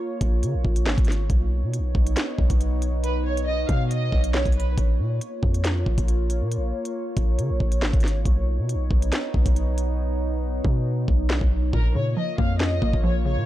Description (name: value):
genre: hip hop, drill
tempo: 138 BPM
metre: 4/4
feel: half-time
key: Bb phrygian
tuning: A4 = 440 Hz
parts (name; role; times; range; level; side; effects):
- warbly tape-like pad; sustained chords; 0.0-13.5 s; Bb3 to Db5; -31 LUFS; equal; chorus, built-in reverb
- hard-hitting 808-style bass; bass; 0.2-13.5 s; Ab1 to Db3; -23 LUFS; equal; none
- drill drum kit; drums; 0.2-13.0 s; handclaps, hi-hat, kick drum, snare drum; -23 LUFS; equal; none
- warm studio violin section; melody; 3.0-4.7, 11.7-13.4 s; Bb4 to F5; -30 LUFS; equal; low-pass filter, digital delay
- hollow square pluck; accompaniment; 11.7-13.5 s; Bb2 to Db4; -28 LUFS; equal; chorus, low-pass filter
room: digital ambience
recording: dark, warm production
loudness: -21 LUFS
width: side -14 dB against mid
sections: 0.0-13.5 A section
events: break 0.0-3.0; hi-hats muted 10.0-11.7, 11.7-13.5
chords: 0.0 Bbm; 1.3 Badd9; 4.8 Bbm; 8.3 Badd9; 11.7 Bbm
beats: 0.43 0.86 | 1.30 1.73 2.17 2.60 | 3.04 3.47 3.91 4.34 | 4.78 5.21 5.65 6.08 | 6.51 6.95 7.38 7.82 | 8.26 8.69 9.12 9.56 | 9.99 10.43 10.86 11.30 | 11.73 12.17 12.60 13.04